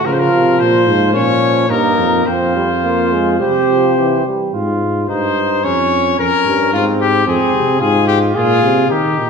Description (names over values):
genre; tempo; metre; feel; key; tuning
classical, imitative canzona for brass ensemble; 109 BPM; 4/4; straight; F minor; A4 = 440 Hz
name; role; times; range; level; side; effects
bright trumpet; melody; 0.0-9.3 s; F4 to Db5; -16 LUFS; left 6 dB; none
warm flugelhorn; second line; 0.0-9.3 s; C4 to Ab4; -18 LUFS; right 4 dB; none
clear trombone; accompaniment; 0.0-4.5 s; E3 to C4; -18 LUFS; right 2 dB; none
dark bass trombone; bass; 0.1-9.3 s; F2 to Eb3; -17 LUFS; equal; none
room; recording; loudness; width
wet recital hall reverb, RT60 1.8 s; recorded in a church or concert hall; -12 LUFS; side -5 dB against mid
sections
0.0-4.5 A section; 4.5-8.9 B section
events
none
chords
0.1 Bbm; 2.3 Csus4/F; 3.4 C; 4.5 Fm/Ab; 5.6 Bbm/F; 6.7 Fm